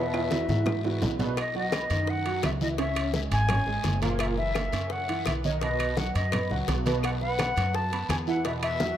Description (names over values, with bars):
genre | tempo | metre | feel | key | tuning
latin, salsa | 170 BPM | 4/4 | straight | unclear | A4 = 440 Hz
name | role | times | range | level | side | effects
reedy silver concert flute | melody | 0.0-9.0 s | C#5 to A5 | -31 LUFS | left 2 dB | none
warm concert grand piano | accompaniment | 0.0-9.0 s | A#2 to C#6 | -30 LUFS | right 3 dB | ensemble chorus
upright bass | bass | 0.0-8.9 s | F#1 to G#2 | -30 LUFS | equal | none
claves | percussion | 0.1-8.8 s | none | -43 LUFS | left 4 dB | none
congas | percussion | 0.1-9.0 s | none | -33 LUFS | equal | none
timbales | percussion | 0.1-8.8 s | none | -36 LUFS | right 6 dB | none
bongos | percussion | 0.3-9.0 s | none | -38 LUFS | left 8 dB | none
guiro | percussion | 0.3-9.0 s | none | -42 LUFS | left 8 dB | none
room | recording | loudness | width
light reverb, studio reverb | none | -25 LUFS | side -10 dB against mid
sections
0.0-1.4 A section; 1.4-9.0 B section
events
drum fill 0.0-1.4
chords
0.0 Eadd9; 1.4 B; 2.8 C#m; 4.2 F#7; 5.6 B; 7.0 B5; 8.4 Esus2